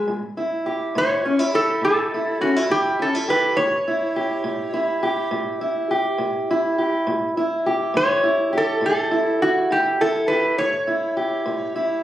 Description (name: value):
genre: acoustic country blues, solo or duo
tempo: 69 BPM (dotted quarters)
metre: 12/8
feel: straight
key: A mixolydian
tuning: A4 = 440 Hz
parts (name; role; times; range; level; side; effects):
- metal-body resonator slide guitar; melody; 0.0-12.0 s; F#4 to C#5; -20 LUFS; equal; none
- fingerpicked steel-string acoustic guitar; accompaniment; 0.0-12.0 s; A2 to G4; -22 LUFS; equal; none
room: moderate small room reverb, RT60 0.5 s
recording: recorded on a phone in the room, studio reverb, compression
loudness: -19 LUFS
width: side -13 dB against mid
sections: 0.1-12.0 A section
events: none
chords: 0.1 A7